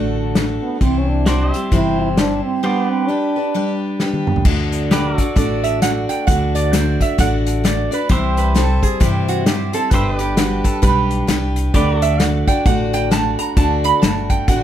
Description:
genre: honky-tonk and classic country.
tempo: 132 BPM.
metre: 4/4.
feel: swing 60% on 8ths.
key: D mixolydian.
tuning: A4 = 440 Hz.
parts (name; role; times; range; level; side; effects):
mellow French horn; melody; 0.0-3.8 s; B3 to E4; -20 LUFS; right 2 dB; plate reverb.
picked steel-string acoustic guitar; accompaniment; 0.0-14.6 s; C3 to D5; -21 LUFS; left 2 dB; none.
pedal steel guitar; sustained chords; 0.0-14.6 s; F#4 to E5; -27 LUFS; right 2 dB; none.
upright bass; bass; 0.0-14.6 s; G1 to G2; -20 LUFS; equal; none.
unplugged drum kit; drums; 0.4-14.6 s; crash cymbal, hi-hat, kick drum, snare drum, toms; -18 LUFS; left 1 dB; none.
lap resonator guitar; second line; 5.4-14.6 s; F#4 to B5; -21 LUFS; right 7 dB; none.
room: moderate studio ambience, RT60 0.5 s.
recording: none.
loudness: -14 LUFS.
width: side -11 dB against mid.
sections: 0.0-4.5 A section; 4.5-14.6 B section.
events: drum fill 4.0-4.5; resonator guitar played with a steel bar solo 4.5-14.6.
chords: 0.0 D; 0.8 C; 2.6 G; 4.5 D; 8.1 C; 9.9 G; 11.7 D.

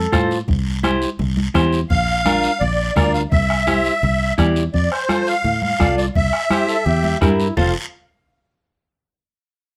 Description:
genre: latin, cumbia.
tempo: 169 BPM.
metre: 4/4.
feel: straight.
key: F major.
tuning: A4 = 440 Hz.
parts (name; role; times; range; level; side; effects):
bright trombone; second line; 0.0-0.4, 6.5-7.7 s; C4 to A4; -27 LUFS; equal; none.
fingered electric bass; bass; 0.0-7.7 s; F1 to A2; -23 LUFS; equal; none.
clean electric guitar; accompaniment; 0.1-7.7 s; D4 to D5; -22 LUFS; equal; none.
bombo; percussion; 0.1-7.7 s; none; -23 LUFS; equal; none.
congas; percussion; 0.1-7.7 s; none; -28 LUFS; equal; none.
guiro; percussion; 0.1-7.7 s; none; -35 LUFS; equal; none.
musette accordion; melody; 1.9-7.7 s; C5 to F5; -22 LUFS; equal; plate reverb.
room: light reverb.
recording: none.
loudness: -18 LUFS.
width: mono.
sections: 0.0-4.7 A section; 4.7-7.6 B section; 7.6-9.0 C section.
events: none.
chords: 0.5 C; 1.9 Bb; 3.3 C; 4.7 F; 6.2 C7; 7.6 F.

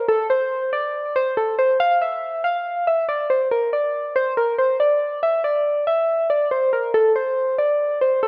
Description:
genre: hip hop.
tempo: 140 BPM.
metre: 4/4.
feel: half-time.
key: unclear.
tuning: A4 = 440 Hz.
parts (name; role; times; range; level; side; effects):
soft electric-piano-like synth keys; solo; 0.0-8.3 s; A4 to F5; -20 LUFS; equal; chorus, low-pass filter.
room: light reverb, digital ambience.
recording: none.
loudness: -20 LUFS.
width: mono.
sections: 0.0-8.3 A section.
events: none.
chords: none.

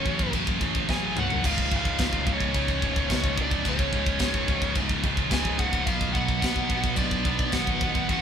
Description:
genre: heavy metal.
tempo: 108 BPM.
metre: 4/4.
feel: straight.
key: C# phrygian dominant.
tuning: A4 = 439 Hz.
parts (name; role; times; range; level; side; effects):
high-gain lead guitar; melody; 0.0-8.2 s; C#5 to G#5; -31 LUFS; left 1 dB; distortion.
high-gain lead guitar; second line; 0.0-8.2 s; C#4 to G#4; -38 LUFS; right 3 dB; distortion.
scooped high-gain guitar; riff; 0.0-8.2 s; C#2 to B3; -31 LUFS; left 6 dB; distortion.
scooped high-gain guitar; riff; 0.0-8.2 s; C#2 to B3; -28 LUFS; right 5 dB; distortion.
growling picked electric bass; bass; 0.0-8.2 s; C#1 to C#2; -33 LUFS; equal; overdrive.
tight metal drum kit; drums; 0.1-8.2 s; china cymbal, crash cymbal, kick drum, snare drum, toms; -27 LUFS; equal; none.
room: light reverb.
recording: band playing live in one room.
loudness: -23 LUFS.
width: side -8 dB against mid.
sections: 0.0-8.2 A section.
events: drum fill 0.9-1.4.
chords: 0.0 F#m/A; 1.4 C#; 5.9 Bm.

